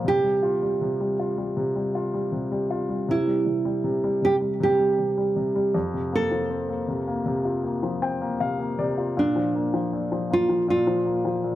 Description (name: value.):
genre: pop.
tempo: 79 BPM.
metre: 4/4.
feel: straight.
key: unclear.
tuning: A4 = 444 Hz.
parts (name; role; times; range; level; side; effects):
nylon-string guitar; melody; 0.0-11.6 s; D4 to A4; -24 LUFS; right 2 dB; none.
warm baby grand piano; accompaniment; 0.0-11.6 s; F2 to G5; -25 LUFS; left 1 dB; none.
room: small room reverb.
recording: dry, close 1970s-style studio recording.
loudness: -22 LUFS.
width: side -14 dB against mid.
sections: 0.0-11.6 A section.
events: grand piano fill 7.7-9.2.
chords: 0.1 Csus4; 3.1 C; 5.8 Fsus4; 9.2 Bb.